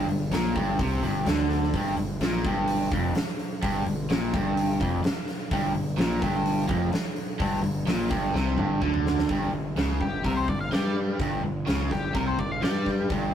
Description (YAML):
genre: blues rock power trio and southern rock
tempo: 127 BPM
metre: 4/4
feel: straight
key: G minor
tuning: A4 = 441 Hz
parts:
  - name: overdriven electric guitar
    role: riff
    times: 0.0-13.3 s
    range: F2 to G3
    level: -27 LUFS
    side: equal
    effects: none
  - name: fuzz picked electric bass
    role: bass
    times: 0.0-13.3 s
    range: F1 to G2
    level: -29 LUFS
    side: left 1 dB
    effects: overdrive
  - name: huge arena drum kit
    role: drums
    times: 0.1-13.2 s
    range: hi-hat, kick drum, snare drum, toms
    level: -30 LUFS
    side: equal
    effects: none
  - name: octave-fuzz lead guitar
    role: melody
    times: 10.0-12.9 s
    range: G4 to F5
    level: -31 LUFS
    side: left 3 dB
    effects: distortion
room: wet small room reverb, RT60 0.5 s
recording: rough rehearsal-room recording, tube saturation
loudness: -24 LUFS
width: side -9 dB against mid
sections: 0.0-9.3 A section; 9.3-13.3 B section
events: drum fill 8.3-9.3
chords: 0.0 Gm; 9.3 Gsus4